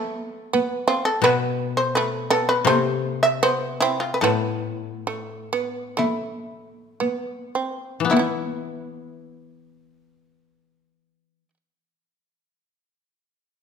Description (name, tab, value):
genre	japanese traditional, Japanese chamber music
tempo	51-86 BPM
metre	4/4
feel	rubato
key	unclear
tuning	A4 = 440 Hz
part	shamisen	melody	0.0-11.5 s	E4 to E5	-22 LUFS	equal	none
part	shamisen	second line	0.0-11.6 s	E3 to E4	-25 LUFS	right 5 dB	none
part	taiko ensemble	percussion	0.5-8.7 s	none	-28 LUFS	left 2 dB	none
part	koto	accompaniment	1.2-11.5 s	A2 to E4	-26 LUFS	left 8 dB	none
room	wet recital hall reverb, RT60 1.6 s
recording	none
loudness	-20 LUFS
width	side -6 dB against mid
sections	0.0-8.1 A section; 8.1-12.6 B section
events	slowing down 1.2-8.1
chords	none